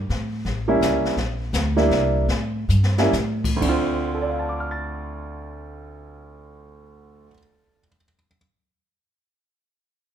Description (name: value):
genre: jazz piano trio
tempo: 118-168 BPM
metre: 3/4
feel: swing 65% on 8ths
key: D minor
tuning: A4 = 438 Hz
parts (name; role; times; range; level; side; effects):
- upright bass; bass; 0.0-7.3 s; A1 to A2; -24 LUFS; equal; none
- jazz brush drum kit; drums; 0.1-4.2 s; brushed snare drum, crash cymbal, hi-hat, kick drum, snare drum; -28 LUFS; left 2 dB; none
- warm baby grand piano; melody; 0.7-8.4 s; D2 to A6; -23 LUFS; right 2 dB; none
room: light reverb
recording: minimal, uncompressed stereo recording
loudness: -20 LUFS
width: side -9 dB against mid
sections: 0.0-3.6 A section; 3.6-6.7 B section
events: slowing down 1.2-3.6; drum fill 2.7-3.1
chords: 0.1 A7b9; 1.2 Em7b5; 2.3 A7(no3); 3.6 Dm7